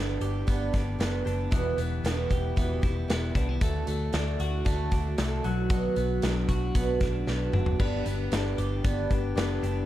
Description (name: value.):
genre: jangly indie pop.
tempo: 115 BPM.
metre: 4/4.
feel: straight.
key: G major.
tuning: A4 = 438 Hz.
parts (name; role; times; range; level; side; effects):
picked twelve-string acoustic guitar; accompaniment; 0.0-9.9 s; E2 to G4; -33 LUFS; right 6 dB; plate reverb.
twelve-string electric guitar; arpeggios; 0.0-9.9 s; E3 to G4; -33 LUFS; left 3 dB; phaser, tape echo.
vintage muted picked electric bass; bass; 0.0-9.8 s; E1 to D2; -30 LUFS; equal; none.
big rock drum kit; drums; 0.2-9.8 s; crash cymbal, hi-hat, kick drum, snare drum, toms; -30 LUFS; equal; none.
reed electric piano; accompaniment; 7.8-9.9 s; D4 to D5; -34 LUFS; left 10 dB; medium tremolo.
room: light reverb.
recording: dark, warm production.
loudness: -25 LUFS.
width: side -13 dB against mid.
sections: 0.0-9.9 A section.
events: drum fill 7.3-7.8.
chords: 0.0 G; 1.5 Em; 3.6 D; 5.4 Bm; 7.8 G.